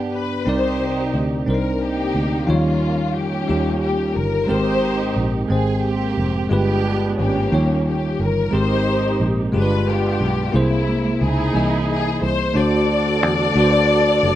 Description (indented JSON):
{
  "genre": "slow gospel",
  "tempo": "60 BPM (dotted quarters)",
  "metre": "6/8",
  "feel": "straight",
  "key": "C minor",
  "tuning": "A4 = 440 Hz",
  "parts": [
    { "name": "warm studio string section", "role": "melody", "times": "0.0-14.4 s", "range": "G#3 to D5", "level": "-21 LUFS", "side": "left 1 dB", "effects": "slapback echo" },
    { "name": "bell-like tine electric piano", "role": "accompaniment", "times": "0.0-14.4 s", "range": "G2 to G5", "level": "-21 LUFS", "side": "equal", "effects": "medium stereo tremolo" },
    { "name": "fingered electric bass", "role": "bass", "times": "0.0-14.4 s", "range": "F1 to F2", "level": "-22 LUFS", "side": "right 1 dB", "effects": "none" }
  ],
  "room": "little or no reverb",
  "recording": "recorded outdoors, with no room sound",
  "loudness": "-17 LUFS",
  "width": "side -13 dB against mid",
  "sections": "0.5-14.4 A section",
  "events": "none",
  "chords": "0.5 Cm9; 2.5 Eb9; 4.5 Abmaj9; 6.5 G7b9; 7.5 Eb9; 8.5 Abmaj9; 9.5 G7b9; 10.5 C7alt; 12.6 D7"
}